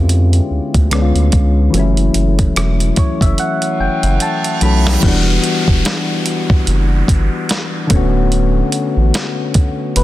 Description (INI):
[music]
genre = contemporary R&B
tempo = 73 BPM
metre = 4/4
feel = swing 58% on 16ths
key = E dorian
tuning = A4 = 440 Hz
[part]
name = soft electric-piano-like synth keys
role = accompaniment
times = 0.0-10.0 s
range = D3 to B5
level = -17 LUFS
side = left 2 dB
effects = chorus
[part]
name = saturated sub bass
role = bass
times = 0.0-10.0 s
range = D1 to E#2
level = -14 LUFS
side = equal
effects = none
[part]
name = dusty soul sampler-style drum kit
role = drums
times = 0.1-10.0 s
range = crash cymbal, hi-hat, kick drum, rim click, snare drum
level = -16 LUFS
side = equal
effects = none
[part]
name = reverse cymbal and downlifter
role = sound effects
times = 3.8-10.0 s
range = none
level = -24 LUFS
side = right 1 dB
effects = none
[sound]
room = digital ambience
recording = dense, heavily limited modern master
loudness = -12 LUFS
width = side -15 dB against mid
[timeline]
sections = 0.0-5.0 A section; 5.0-10.0 B section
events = synth keys fill 2.6-5.0; drum fill 3.4-5.0; reverse cymbal 3.8-5.0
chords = 0.0 C#7b9; 1.7 F#m7; 5.0 Em9; 7.9 Bm9/D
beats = 0.10 0.92 | 1.74 2.56 3.38 4.21 | 5.03 5.85 6.67 7.49 | 8.32 9.14 9.96